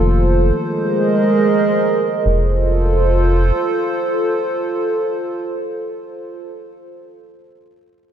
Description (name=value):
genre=IDM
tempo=free time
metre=none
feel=none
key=F mixolydian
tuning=A4 = 440 Hz
part: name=hollow soft pad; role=sustained chords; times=0.0-6.5 s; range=Ab3 to Eb5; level=-17 LUFS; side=right 1 dB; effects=chorus
part: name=rubbery square bass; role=bass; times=0.0-3.5 s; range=F1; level=-15 LUFS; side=equal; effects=none
room=moderate lush hall reverb, RT60 2.8 s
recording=dark, warm production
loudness=-15 LUFS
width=side -9 dB against mid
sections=0.0-2.3 A section; 2.3-5.7 B section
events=none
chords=0.0 F; 0.5 Abadd9; 2.3 F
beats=free time